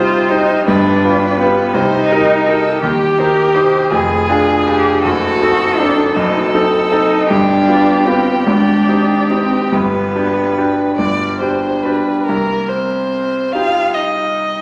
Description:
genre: classical, slow romantic movement for piano trio.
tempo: 46-57 BPM (dotted quarters).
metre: 6/8.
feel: rubato.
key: C minor.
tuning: A4 = 440 Hz.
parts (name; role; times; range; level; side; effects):
clear violin; melody; 0.0-14.6 s; G4 to F5; -21 LUFS; equal; none.
warm cello; second line; 0.0-14.6 s; Bb3 to Ab4; -19 LUFS; equal; none.
bright grand piano; accompaniment; 0.0-14.6 s; F1 to C5; -17 LUFS; equal; none.
room: wet recital hall reverb, RT60 1.4 s.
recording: vinyl crackle.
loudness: -14 LUFS.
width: mono.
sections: 0.0-12.3 A section; 12.3-14.6 B section.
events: none.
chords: 0.0 Cm; 0.7 G7; 1.7 Cm7; 2.8 Cm/Eb; 3.9 Ddim/F; 5.0 F#dim7; 7.3 G7; 8.5 Abmaj7; 9.7 G; 12.3 Cm.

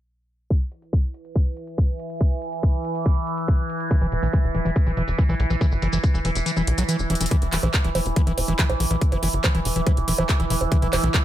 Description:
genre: psychedelic trance.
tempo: 141 BPM.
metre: 4/4.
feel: straight.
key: E minor.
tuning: A4 = 439 Hz.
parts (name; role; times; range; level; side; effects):
overtone-sweeping drone; sustained chords; 1.3-11.2 s; E3; -28 LUFS; right 2 dB; chorus, built-in reverb, sidechain pumping.
big-room dance drum kit; drums; 0.5-11.2 s; bongos, handclaps, hi-hat; -26 LUFS; right 2 dB; none.
electronic kick drum; drums; 0.5-11.2 s; none; -20 LUFS; equal; none.
overdriven acid bass; riff; 3.9-11.2 s; E3 to F#3; -27 LUFS; equal; distortion, auto-pan, sidechain pumping, ping-pong delay.
maracas; percussion; 3.9-7.3 s; none; -34 LUFS; left 5 dB; none.
tight sequencer bass; bass; 4.0-11.1 s; E1 to B1; -24 LUFS; equal; tube saturation.
room: little or no reverb.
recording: low-pass filter.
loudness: -20 LUFS.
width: side -12 dB against mid.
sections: 0.5-7.3 A section; 7.3-11.2 B section.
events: filter sweep 0.5-7.3; kick drops out 6.5-7.3; drum fill 7.1.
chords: 0.5 E5.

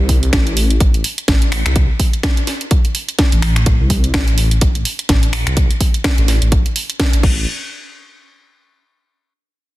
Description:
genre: bass house.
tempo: 126 BPM.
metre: 4/4.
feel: swing 58% on 16ths.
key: A minor.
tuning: A4 = 441 Hz.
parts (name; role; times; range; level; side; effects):
phased detuned saw bass; bass; 0.0-7.5 s; A1 to C2; -16 LUFS; equal; phaser, sidechain pumping.
electronic kick drum; drums; 0.1-7.3 s; none; -14 LUFS; equal; overdrive.
house drum kit; drums; 0.1-7.3 s; crash cymbal, finger snaps, hi-hat, snare drum; -20 LUFS; equal; overdrive.
room: little or no reverb.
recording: dense, heavily limited modern master.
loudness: -13 LUFS.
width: side -17 dB against mid.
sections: 0.0-7.5 A section; 7.5-9.4 B section.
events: filter sweep on detuned saw bass 0.0-7.5.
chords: none.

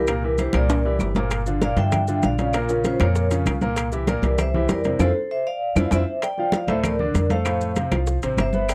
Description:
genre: latin, salsa.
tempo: 195 BPM.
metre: 4/4.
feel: straight.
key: F major.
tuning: A4 = 441 Hz.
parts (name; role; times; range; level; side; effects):
vibraphone with medium hard mallets; melody; 0.0-8.7 s; F4 to G5; -27 LUFS; equal; none.
clear grand piano; accompaniment; 0.0-8.7 s; A2 to B5; -28 LUFS; equal; none.
upright bass; bass; 0.0-8.7 s; G1 to G2; -26 LUFS; equal; none.
claves; percussion; 0.1-8.7 s; none; -37 LUFS; equal; none.
congas; percussion; 0.1-8.7 s; none; -30 LUFS; equal; none.
maracas; percussion; 0.1-8.7 s; none; -43 LUFS; equal; none.
timbales; percussion; 0.1-8.7 s; none; -33 LUFS; equal; none.
bongos; percussion; 1.3-8.7 s; none; -32 LUFS; equal; none.
room: little or no reverb.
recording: dry, close 1970s-style studio recording.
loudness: -22 LUFS.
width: mono.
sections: 0.0-6.2 A section; 6.2-8.7 B section.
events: drum fill 0.7-1.3, 5.3-6.2; band accent 5.0-6.2.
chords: 0.1 C7; 1.3 Gm7; 2.5 Bbm; 3.8 C7; 5.0 Fmaj7; 6.2 Bbmaj7; 7.5 F.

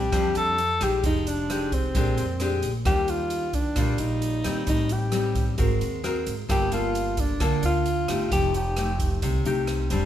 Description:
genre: bossa nova.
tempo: 132 BPM.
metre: 4/4.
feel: straight.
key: Bb major.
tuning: A4 = 440 Hz.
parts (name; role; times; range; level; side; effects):
mellow alto saxophone; melody; 0.0-9.2 s; C4 to A4; -26 LUFS; left 1 dB; none.
nylon-string guitar; accompaniment; 0.0-10.1 s; A2 to Bb4; -28 LUFS; left 3 dB; none.
upright bass; bass; 0.0-10.1 s; F1 to F2; -28 LUFS; right 1 dB; none.
swinging big-band drum kit; drums; 0.1-10.0 s; hi-hat, kick drum, rim click; -29 LUFS; right 1 dB; none.
room: moderate large studio reverb, RT60 0.9 s.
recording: band playing live in one room.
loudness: -22 LUFS.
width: side -11 dB against mid.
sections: 0.0-10.1 A section.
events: none.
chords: 0.0 Bb69; 1.0 Fm9; 1.9 Bb13; 2.9 Ebmaj9; 4.7 Am7b5; 5.6 Ab9; 6.5 Gm9; 8.3 F9.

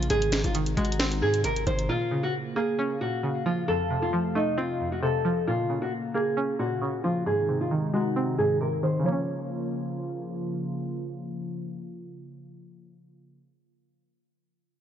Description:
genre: hip hop, trap.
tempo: 134 BPM.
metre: 4/4.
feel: half-time.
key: Bb minor.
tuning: A4 = 439 Hz.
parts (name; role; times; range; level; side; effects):
nylon-string guitar; melody; 0.0-10.4 s; Eb4 to Db5; -28 LUFS; equal; low-pass filter, digital delay.
string-like resonator pluck; accompaniment; 0.0-13.5 s; F2 to Db4; -29 LUFS; right 1 dB; chorus, low-pass filter.
hollow soft pad; sustained chords; 0.0-13.4 s; C3 to F5; -33 LUFS; equal; chorus, low-pass filter.
distorted 808-style bass; bass; 0.0-1.9 s; Ab1 to Ab2; -28 LUFS; equal; distortion.
trap drum kit; drums; 0.0-1.9 s; finger snaps, hi-hat, snare drum; -31 LUFS; left 1 dB; none.
room: light reverb.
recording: nothing above 7.5 kHz.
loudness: -25 LUFS.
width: side -9 dB against mid.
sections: 0.0-9.1 A section; 9.1-12.6 B section.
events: filter sweep 0.0-9.1.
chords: 0.1 Ab; 1.9 Bbm; 3.7 F; 5.5 Bbm; 7.3 Ab; 9.1 Bbm.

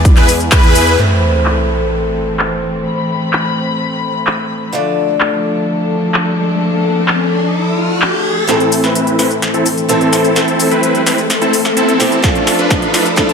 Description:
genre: EDM, festival progressive house.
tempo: 128 BPM.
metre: 4/4.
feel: straight.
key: A minor.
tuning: A4 = 440 Hz.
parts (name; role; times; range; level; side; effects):
dark chamber string section; sustained chords; 0.0-13.3 s; E3 to B5; -17 LUFS; left 2 dB; sidechain pumping, low-pass filter.
wide detuned saw bass; bass; 0.0-1.0 s; E2; -16 LUFS; equal; chorus, sidechain pumping.
big-room dance drum kit; drums; 0.1-13.3 s; cabasa, handclaps, hi-hat, snare drum; -18 LUFS; left 1 dB; high-pass filter on hats, low-pass filter on hats, high-pass filter on perc, low-pass filter on perc, high-pass filter on snare, low-pass filter on snare, high-pass filter on room, low-pass filter on room.
electronic kick drum; drums; 0.1-0.6, 12.2-13.3 s; none; -11 LUFS; equal; none.
wide unison lead; arpeggios; 0.2-1.0 s; B4; -20 LUFS; left 1 dB; ensemble chorus, sidechain pumping, tape echo.
supersaw chords; riff; 0.2-1.0, 8.5-13.3 s; C4 to B4; -15 LUFS; equal; sidechain pumping, low-pass filter, tape echo.
picked old ladder-braced acoustic guitar; accompaniment; 1.0-13.3 s; A2 to D5; -20 LUFS; equal; sidechain pumping, tape echo.
sub drop and riser; sound effects; 1.0-13.3 s; none; -20 LUFS; equal; none.
room: moderate huge ambient reverb, RT60 6.7 s.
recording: high-pass filter.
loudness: -11 LUFS.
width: side -6 dB against mid.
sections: 1.0-8.5 A section; 8.5-13.3 B section.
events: band accent 0.5; impact 1.0-2.9; filter sweep on string section 1.0-8.5; riser 5.9-8.5, 8.5-13.3; build-up 8.5-13.3; drum fill 8.5-13.3; filter sweep on supersaw synth 8.5-13.3.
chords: 0.0 E; 1.0 Am; 4.7 Dm; 8.5 Am; 12.2 Dm.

